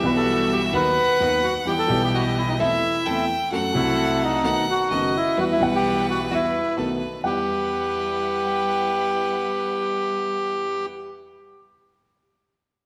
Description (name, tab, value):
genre	tango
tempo	129 BPM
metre	4/4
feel	rubato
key	E harmonic minor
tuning	A4 = 443 Hz
part	bandoneon	melody	0.0-10.9 s	D#4 to B4	-25 LUFS	equal	none
part	clear violin	second line	0.0-10.8 s	B4 to G5	-30 LUFS	equal	none
part	warm concert grand piano	accompaniment	0.0-10.8 s	F#1 to F#5	-28 LUFS	equal	none
part	bright symphonic string section	stabs	0.0-10.8 s	D#3 to F#5	-35 LUFS	equal	none
room	wet concert hall reverb, RT60 2.0 s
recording	none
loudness	-22 LUFS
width	mono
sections	0.0-7.2 A section; 7.2-11.0 B section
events	none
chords	0.0 Emadd9; 0.7 B/D#; 1.7 Em; 2.6 Am/E; 3.5 F#dim; 4.4 B7; 5.4 Emadd9; 6.8 B7; 7.2 Emadd9